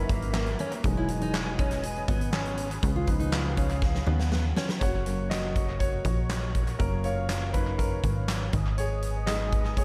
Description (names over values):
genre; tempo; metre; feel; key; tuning
piano-driven pop; 121 BPM; 4/4; straight; F# major from 4.8 s; A4 = 440 Hz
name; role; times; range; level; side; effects
warm baby grand piano; accompaniment; 0.0-9.8 s; E#3 to D#5; -36 LUFS; equal; tape echo
breathy large flute ensemble; sustained chords; 0.0-9.8 s; C#4 to D#6; -41 LUFS; equal; none
plucky analog bass; bass; 0.0-9.8 s; E1 to D#2; -32 LUFS; equal; none
fingerpicked steel-string acoustic guitar; riff; 0.1-4.7 s; A#3 to E#4; -36 LUFS; equal; tape echo
huge arena drum kit; drums; 0.1-9.8 s; handclaps, hi-hat, kick drum, snare drum; -32 LUFS; equal; tape echo
room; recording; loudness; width
light reverb, studio ambience; echo-heavy mix; -28 LUFS; mono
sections
0.0-4.8 A section; 4.8-9.8 B section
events
drum fill 3.8-4.8; grand piano solo 4.8-9.8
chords
0.0 F#; 0.8 Emaj7; 2.8 C#7; 4.8 F#; 8.5 G#m